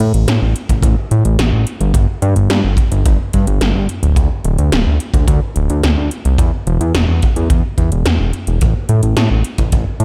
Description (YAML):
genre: synthwave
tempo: 108 BPM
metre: 4/4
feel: straight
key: unclear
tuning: A4 = 440 Hz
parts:
  - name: fat analog bass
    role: bass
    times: 0.0-10.0 s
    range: D1 to A2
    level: -16 LUFS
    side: equal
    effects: tube saturation, sidechain pumping
  - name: 80s electronic pad drums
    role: drums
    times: 0.0-10.0 s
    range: hi-hat, snare drum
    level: -23 LUFS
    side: equal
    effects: overdrive
  - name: kick drum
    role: drums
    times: 0.7-9.8 s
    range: none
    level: -20 LUFS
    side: equal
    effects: none
room: studio reverb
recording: none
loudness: -15 LUFS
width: mono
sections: 0.0-10.0 A section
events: none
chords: none